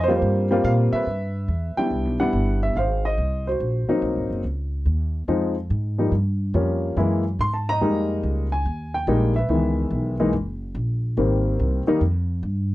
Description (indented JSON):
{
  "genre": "jazz piano trio",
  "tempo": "142 BPM",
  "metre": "4/4",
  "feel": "swing 67% on 8ths",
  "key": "unclear",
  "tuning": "A4 = 440 Hz",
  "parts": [
    { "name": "warm baby grand piano", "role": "melody", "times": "0.0-12.0 s", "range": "Eb3 to C6", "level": "-22 LUFS", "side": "left 1 dB", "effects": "none" },
    { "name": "upright bass", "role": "bass", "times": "0.0-12.7 s", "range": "Gb1 to Bb2", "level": "-23 LUFS", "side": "equal", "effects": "none" }
  ],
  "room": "little or no reverb",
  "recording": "dry, close 1970s-style studio recording",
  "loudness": "-20 LUFS",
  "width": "side -16 dB against mid",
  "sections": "0.0-1.1 A section; 1.1-12.7 B section",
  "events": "grand piano solo 0.0-1.1",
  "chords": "0.0 Abmaj13 (rootless); 1.1 Cmaj7 (rootless); 2.8 Ab7; 4.4 Db; 6.1 Gm7b5; 7.0 Gb9; 7.8 Fm11; 9.5 Dbm7; 10.3 Gb; 11.2 Abmaj7",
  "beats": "0.22 0.64 | 1.07 1.49 1.91 2.33 | 2.76 3.18 3.60 4.03 | 4.45 4.87 5.29 5.71 | 6.13 6.55 6.97 7.39 | 7.82 8.23 8.65 9.08 | 9.50 9.92 10.34 10.76 | 11.18 11.60 12.01 12.43"
}